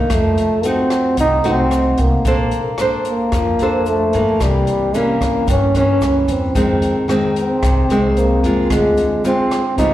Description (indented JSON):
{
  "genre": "bossa nova",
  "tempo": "112 BPM",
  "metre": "4/4",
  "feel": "straight",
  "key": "unclear",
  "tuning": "A4 = 440 Hz",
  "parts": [
    { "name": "mellow trombone", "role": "melody", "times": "0.0-9.9 s", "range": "G3 to Eb4", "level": "-17 LUFS", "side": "equal", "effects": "slapback echo" },
    { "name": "nylon-string guitar", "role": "accompaniment", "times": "0.0-9.9 s", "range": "F2 to C5", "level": "-18 LUFS", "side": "equal", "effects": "slapback echo" },
    { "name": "upright bass", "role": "bass", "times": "0.1-9.9 s", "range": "Bb1 to G2", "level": "-20 LUFS", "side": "equal", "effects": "none" },
    { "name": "open jazz drum kit", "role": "drums", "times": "0.1-9.9 s", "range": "hi-hat, kick drum, rim click", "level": "-24 LUFS", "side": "equal", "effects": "none" },
    { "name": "egg shaker", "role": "percussion", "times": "0.1-9.9 s", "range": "none", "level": "-47 LUFS", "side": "right 4 dB", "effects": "none" }
  ],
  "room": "light reverb",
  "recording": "live gig heard through the venue's PA, recital hall reverb",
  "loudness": "-14 LUFS",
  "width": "side -13 dB against mid",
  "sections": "0.0-9.9 A section",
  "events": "none",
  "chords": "0.1 F7b9; 2.3 Bbmaj9; 4.4 C7b9; 6.6 Fm7; 8.7 Dm7b5",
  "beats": "| 0.11 0.65 1.19 1.72 | 2.26 2.79 3.33 3.87 | 4.41 4.94 5.48 6.02 | 6.55 7.09 7.63 8.16 | 8.70 9.24 9.77"
}